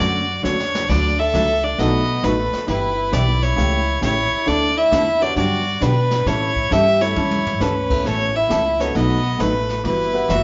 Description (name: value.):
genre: country, western swing.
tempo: 134 BPM.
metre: 4/4.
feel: swing 66% on 8ths.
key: D major.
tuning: A4 = 439 Hz.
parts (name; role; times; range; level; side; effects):
clear fiddle; melody; 0.0-10.4 s; B4 to E5; -22 LUFS; equal; none.
warm fiddle; second line; 0.0-10.4 s; A3 to A4; -29 LUFS; equal; none.
vintage hollow-body jazz guitar; accompaniment; 0.0-10.4 s; B2 to B4; -27 LUFS; equal; none.
upright bass; bass; 0.0-10.4 s; F#1 to B2; -25 LUFS; equal; none.
jazz brush drum kit; drums; 0.0-10.4 s; brushed snare drum, crash cymbal, hi-hat, kick drum, snare drum, toms; -31 LUFS; equal; none.
clear upright piano; accompaniment; 1.8-10.3 s; G3 to D5; -30 LUFS; equal; none.
room: moderate large studio reverb, RT60 1.1 s.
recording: band playing live in one room, nothing above 7.5 kHz.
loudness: -19 LUFS.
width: mono.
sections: 0.9-10.4 A section.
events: drum fill 0.4-0.9, 7.2-7.6.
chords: 0.0 Dmaj7; 0.9 D6; 1.8 B7; 2.7 Em; 3.6 A7/C#; 4.5 Dsus2; 5.4 Gmaj7; 6.3 A7; 8.1 Aadd9; 8.9 B7; 9.8 Emadd9.